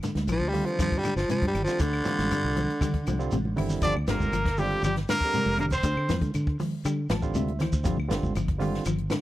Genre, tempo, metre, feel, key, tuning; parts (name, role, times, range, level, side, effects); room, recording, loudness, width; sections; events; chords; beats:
afrobeat; 119 BPM; 4/4; straight; G dorian; A4 = 439 Hz
clean electric guitar; arpeggios; 0.0-9.2 s; C3 to G3; -34 LUFS; left 6 dB; lush chorus
compact cocktail drum kit; drums; 0.0-9.2 s; hi-hat, kick drum, snare drum; -31 LUFS; equal
congas; percussion; 0.0-9.2 s; -32 LUFS; right 3 dB
shekere; percussion; 0.0-9.2 s; -38 LUFS; right 1 dB
fingered electric bass; bass; 0.2-9.1 s; F1 to D3; -29 LUFS; equal
raspy baritone saxophone; melody; 0.3-3.3 s; D3 to G3; -28 LUFS; equal; tape echo
claves; percussion; 0.3-9.2 s; -45 LUFS; left 7 dB
barky tine electric piano; accompaniment; 0.5-9.2 s; D3 to A5; -34 LUFS; right 5 dB
clear trumpet; melody; 3.8-6.2 s; G4 to D5; -28 LUFS; equal
raspy tenor saxophone; second line; 3.8-6.2 s; G3 to D4; -35 LUFS; right 3 dB
small room ambience; dry, close 1970s-style studio recording; -24 LUFS; side -15 dB against mid
0.0-3.8 A section; 3.8-9.2 B section
baritone saxophone solo 0.0-3.8; drum fill 3.4-3.8; tine electric piano fill 6.8-7.9
0.0 G7(no3); 1.8 Dm9; 3.8 Gm7; 5.8 Dm9; 7.9 G7sus4
0.29 0.80 1.30 | 1.80 2.31 2.81 3.32 | 3.82 4.33 4.83 5.33 | 5.84 6.34 6.85 7.35 | 7.85 8.36 8.86